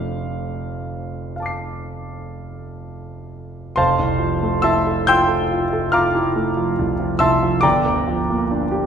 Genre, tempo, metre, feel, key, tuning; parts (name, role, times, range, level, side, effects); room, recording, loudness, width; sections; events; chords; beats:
classical, impressionist solo piano; 40-48 BPM (dotted quarters); 9/8; rubato; F major; A4 = 440 Hz
warm concert grand piano; solo; 0.0-8.9 s; F1 to C7; -18 LUFS; right 1 dB
moderate scoring stage reverb, RT60 1.4 s; minimal, uncompressed stereo recording; -17 LUFS; side -7 dB against mid
0.0-3.8 A section; 3.8-8.9 B section
0.0 F6; 3.8 Fmaj7; 7.6 Gm7
0.90 2.35 | 3.79 5.09 6.37 | 7.64